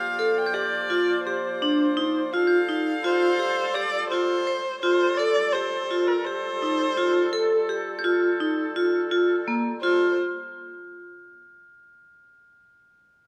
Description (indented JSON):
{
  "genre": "contemporary instrumental, chamber music in an uneven meter",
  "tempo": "168 BPM (eighths)",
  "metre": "7/8",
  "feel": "straight",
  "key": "F mixolydian",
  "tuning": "A4 = 444 Hz",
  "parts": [
    { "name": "rich violin", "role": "melody", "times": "0.0-4.5 s", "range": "C5 to G5", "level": "-33 LUFS", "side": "equal", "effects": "none" },
    { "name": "warm woodwind section", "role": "sustained chords", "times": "0.0-10.2 s", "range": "F3 to D5", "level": "-36 LUFS", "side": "equal", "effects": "none" },
    { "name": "vibraphone with hard mallets", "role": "arpeggios", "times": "0.0-10.2 s", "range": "Bb3 to C5", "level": "-26 LUFS", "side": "equal", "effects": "none" },
    { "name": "glockenspiel with hard plastic mallets", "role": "texture", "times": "0.0-12.3 s", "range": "C6 to A6", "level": "-36 LUFS", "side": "equal", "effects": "none" },
    { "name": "rich viola", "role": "second line", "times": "3.0-10.2 s", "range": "Bb4 to D5", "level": "-29 LUFS", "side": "equal", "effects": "none" }
  ],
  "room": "moderate concert hall reverb, RT60 2.0 s",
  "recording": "none",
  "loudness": "-24 LUFS",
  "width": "mono",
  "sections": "0.0-4.8 A section; 4.8-9.8 B section; 9.8-12.3 C section",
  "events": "none",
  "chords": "0.0 Bbadd9/F; 2.3 Fadd9"
}